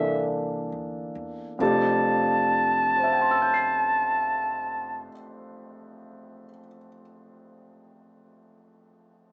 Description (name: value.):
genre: jazz ballad.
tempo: 45 BPM.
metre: 4/4.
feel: swing 66% on 8ths.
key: F major.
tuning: A4 = 439 Hz.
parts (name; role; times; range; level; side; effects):
mellow clarinet; melody; 0.0-5.1 s; E5 to A5; -25 LUFS; equal; cassette tape.
warm concert grand piano; accompaniment; 0.0-9.3 s; F2 to C7; -30 LUFS; equal; cassette tape.
upright bass; bass; 0.0-5.1 s; F1 to E2; -44 LUFS; equal; none.
room: wet studio reverb, RT60 0.6 s.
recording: home recording on cassette, small speaker sound.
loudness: -24 LUFS.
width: mono.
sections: 0.0-1.6 A section; 1.6-7.0 B section.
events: slowing down 0.0-1.6.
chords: 0.0 C13; 1.6 F69.